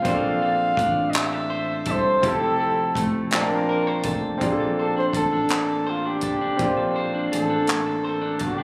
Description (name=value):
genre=slow six-eight R&B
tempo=55 BPM (dotted quarters)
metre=6/8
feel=straight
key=Bb lydian, Bb major from 4.4 s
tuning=A4 = 440 Hz
part: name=warm flugelhorn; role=melody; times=0.0-8.6 s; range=F4 to F5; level=-26 LUFS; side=equal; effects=slapback echo
part: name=clean electric guitar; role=second line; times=0.0-8.6 s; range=F3 to C5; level=-30 LUFS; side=equal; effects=none
part: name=clear grand piano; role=accompaniment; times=0.0-8.6 s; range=C4 to A5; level=-29 LUFS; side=equal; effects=none
part: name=compact cocktail drum kit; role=drums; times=0.0-8.6 s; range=handclaps, hi-hat, kick drum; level=-30 LUFS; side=equal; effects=none
part: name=rubbery square bass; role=bass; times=0.1-8.6 s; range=F1 to C2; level=-34 LUFS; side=equal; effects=none
room=light reverb, small room ambience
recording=recorded on a phone in the room, club reverb, compression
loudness=-23 LUFS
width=mono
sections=0.0-4.4 A section; 4.4-8.6 B section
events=flugelhorn solo 4.4-8.6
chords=0.0 Bbmaj9; 2.2 Fmaj9; 3.3 Bbmaj9